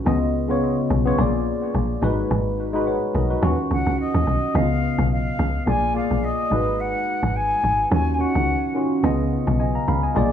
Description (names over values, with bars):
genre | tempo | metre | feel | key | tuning
afrobeats | 107 BPM | 4/4 | swing 55% on 16ths | unclear | A4 = 440 Hz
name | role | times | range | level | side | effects
tine electric piano | accompaniment | 0.0-10.3 s | Db3 to Cb6 | -22 LUFS | left 1 dB | analog chorus, analog delay
woody log drum bass | bass | 0.1-10.3 s | Ab1 to Eb2 | -22 LUFS | equal | none
mellow concert flute | melody | 3.7-8.8 s | Eb5 to Ab5 | -25 LUFS | left 1 dB | analog delay
room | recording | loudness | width
light reverb, small room ambience | echo-heavy mix, studio ambience | -19 LUFS | side -9 dB against mid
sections
0.0-4.5 A section; 4.5-10.3 B section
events
none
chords
0.1 Db9; 1.2 Bb7; 2.0 Abm7; 3.4 Ebm9; 4.5 Db9; 5.7 Bb7; 6.5 Abm7; 7.9 Ebm9; 9.0 Db9